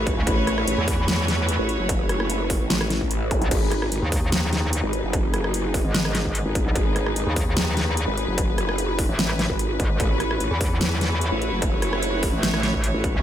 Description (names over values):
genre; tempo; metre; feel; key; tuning
heavy wobble dubstep; 148 BPM; 4/4; half-time; G# phrygian; A4 = 440 Hz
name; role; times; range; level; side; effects
rich studio string section; sustained chords; 0.0-13.2 s; A3 to C#5; -28 LUFS; equal; sidechain pumping
growl bass; bass; 0.0-13.1 s; F#1 to A1; -25 LUFS; equal; chorus, overdrive
dubstep drum kit; drums; 0.1-13.1 s; crash cymbal, hi-hat, rim click, snare drum; -26 LUFS; equal; studio reverb
electronic kick drum; drums; 0.1-13.1 s; none; -24 LUFS; equal; distortion, studio reverb
metallic wobble bass; bass; 0.2-13.2 s; G#1 to E2; -24 LUFS; equal; chorus, overdrive
zap; sound effects; 3.3-3.4 s; none; -32 LUFS; equal; none
room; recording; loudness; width
little or no reverb; none; -20 LUFS; side -11 dB against mid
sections
0.0-13.2 A section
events
none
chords
0.0 A6; 3.5 G#m; 10.0 A6